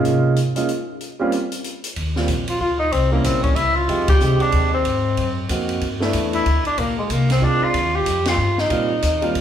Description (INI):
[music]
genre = jazz, small-group swing and bop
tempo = 187 BPM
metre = 3/4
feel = swing 61% on 8ths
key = Eb major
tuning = A4 = 440 Hz
[part]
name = warm baby grand piano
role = accompaniment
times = 0.0-9.3 s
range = G3 to G4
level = -23 LUFS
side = right 3 dB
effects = none
[part]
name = upright bass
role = bass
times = 0.0-9.4 s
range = Bb1 to C3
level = -22 LUFS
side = equal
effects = none
[part]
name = open jazz drum kit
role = drums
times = 0.0-9.4 s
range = hi-hat, kick drum, ride cymbal, snare drum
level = -25 LUFS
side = equal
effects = none
[part]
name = mellow tenor saxophone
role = melody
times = 2.5-9.2 s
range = Ab3 to G4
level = -20 LUFS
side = left 1 dB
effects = none
[sound]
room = wet large studio reverb, RT60 1.3 s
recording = heard from further back in the room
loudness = -17 LUFS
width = side -9 dB against mid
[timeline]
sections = 0.0-2.0 A section; 2.0-9.4 B section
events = upright bass solo 0.0-2.0; band accent 4.1, 8.2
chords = 0.1 Bbm11/C; 1.0 Gm7b5; 2.0 Eb5; 2.9 C7b9; 3.9 Fm9; 4.9 Ab9; 5.8 G6; 6.8 Bb7; 7.7 Eb6